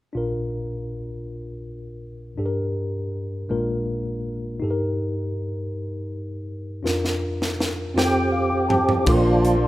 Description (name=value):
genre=slow gospel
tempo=54 BPM (dotted quarters)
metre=6/8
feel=straight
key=Bb major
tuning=A4 = 443 Hz
part: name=tine electric piano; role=accompaniment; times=0.1-9.7 s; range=Bb1 to A5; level=-25 LUFS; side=left 1 dB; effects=overdrive, fast stereo tremolo
part: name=crisp fusion drum kit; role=drums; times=6.9-9.6 s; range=crash cymbal, hi-hat, kick drum, snare drum, toms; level=-25 LUFS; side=equal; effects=none
part: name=percussive tonewheel organ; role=sustained chords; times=8.0-9.7 s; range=F3 to G4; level=-19 LUFS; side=right 1 dB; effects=slow rotary speaker, overdrive, chorus vibrato
part: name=hollow-body short-scale fingered electric bass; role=bass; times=9.1-9.7 s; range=Bb1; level=-22 LUFS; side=equal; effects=none
room=light reverb, small room ambience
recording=rough home demo mix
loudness=-22 LUFS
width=side -16 dB against mid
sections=0.1-9.1 A section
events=drum fill 6.8-9.1; tine electric piano fill 8.0-9.1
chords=0.1 Bb; 2.4 Gm; 3.5 Bb7; 4.6 Eb/G; 6.8 Bb/F; 8.0 F; 9.1 Bb